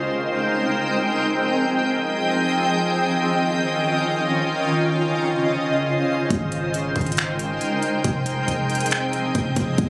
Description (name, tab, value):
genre	hip hop, atmospheric cloud-rap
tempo	138 BPM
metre	4/4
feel	half-time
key	unclear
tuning	A4 = 440 Hz
part	shimmering ambient pad	sustained chords	0.0-9.9 s	Db3 to G5	-23 LUFS	equal	chorus, built-in reverb, sidechain pumping
part	backwards swelling texture	texture	0.0-9.9 s	Db3 to Eb6	-30 LUFS	equal	built-in reverb
part	warm 808-style bass	bass	6.3-9.9 s	F1 to Eb2	-28 LUFS	equal	none
part	trap drum kit	drums	6.3-9.9 s	finger snaps, hi-hat, kick drum	-28 LUFS	equal	none
room	moderate huge ambient reverb, RT60 7.3 s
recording	recorded on a phone in the room, club reverb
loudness	-22 LUFS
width	mono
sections	0.0-9.9 A section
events	none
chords	0.0 Abmaj7; 1.1 Fm9; 2.8 Eb9; 4.6 Dbmaj9; 6.3 Abmaj7; 8.0 Fm9